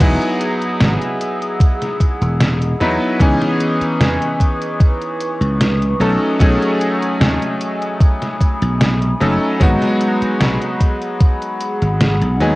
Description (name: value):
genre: vaporwave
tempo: 75 BPM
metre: 4/4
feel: straight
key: E major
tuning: A4 = 437 Hz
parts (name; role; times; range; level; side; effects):
- bright electric grand piano; accompaniment; 0.0-12.6 s; E3 to B4; -18 LUFS; equal; analog chorus, cassette tape, tape echo, plate reverb
- warbly tape-like pad; sustained chords; 0.3-12.6 s; A3 to E6; -25 LUFS; equal; chorus, built-in reverb, cassette tape, plate reverb
- slap bass; bass; 0.0-12.6 s; E1 to E2; -17 LUFS; equal; none
- detuned 8-bit digital drum machine; drums; 0.0-12.6 s; crash cymbal, hi-hat, snare drum; -19 LUFS; equal; vintage 12-bit sampler grit
- electronic kick drum; drums; 0.0-11.4 s; none; -12 LUFS; equal; vintage 12-bit sampler grit
room: moderate booth ambience, RT60 0.2 s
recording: home recording on cassette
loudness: -14 LUFS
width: side -20 dB against mid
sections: 0.0-12.6 A section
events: none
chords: 0.0 Emaj9; 3.2 C#m9; 6.0 B13; 9.6 G#m7